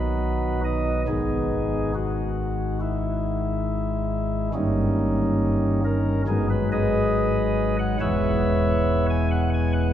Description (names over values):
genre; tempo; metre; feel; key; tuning
classical, chorale-style piece for pipe organ; 69 BPM; 4/4; straight; unclear; A4 = 440 Hz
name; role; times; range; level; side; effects
pipe organ, flutes; solo; 0.0-9.9 s; E1 to G#5; -21 LUFS; equal; none
room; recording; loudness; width
wet church reverb, RT60 3.3 s; recorded in a church or concert hall, nothing above 10.8 kHz; -21 LUFS; side -10 dB against mid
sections
0.0-9.9 A section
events
none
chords
0.0 B; 1.1 G#m; 4.5 D#7/G; 6.3 G#m7; 8.0 C#m7/E